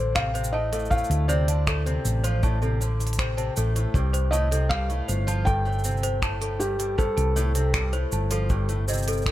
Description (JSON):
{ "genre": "folktronica", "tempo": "79 BPM", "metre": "4/4", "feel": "straight", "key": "unclear", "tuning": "A4 = 440 Hz", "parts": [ { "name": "felt-muted upright piano", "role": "melody", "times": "0.0-9.2 s", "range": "G4 to G5", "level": "-30 LUFS", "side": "equal", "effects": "tape echo" }, { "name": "worn celesta", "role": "second line", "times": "0.0-9.3 s", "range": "A4 to A5", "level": "-33 LUFS", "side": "left 1 dB", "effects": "tape echo" }, { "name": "fingerpicked twelve-string acoustic guitar", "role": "arpeggios", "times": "0.0-9.3 s", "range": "G2 to F3", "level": "-31 LUFS", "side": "equal", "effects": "tape echo" }, { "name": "hollow-body short-scale fingered electric bass", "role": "bass", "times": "0.0-9.3 s", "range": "G1 to D2", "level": "-25 LUFS", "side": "equal", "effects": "none" }, { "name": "kick drum", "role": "drums", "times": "0.2-9.3 s", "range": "none", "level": "-26 LUFS", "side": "equal", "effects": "none" }, { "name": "minimal click drum kit", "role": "drums", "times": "0.2-9.3 s", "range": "cabasa, finger snaps, hi-hat", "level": "-32 LUFS", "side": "right 1 dB", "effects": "none" } ], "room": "little or no reverb", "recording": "none", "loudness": "-22 LUFS", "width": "side -14 dB against mid", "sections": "0.0-9.3 A section", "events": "none", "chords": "0.0 D7(no3); 3.9 Fadd9" }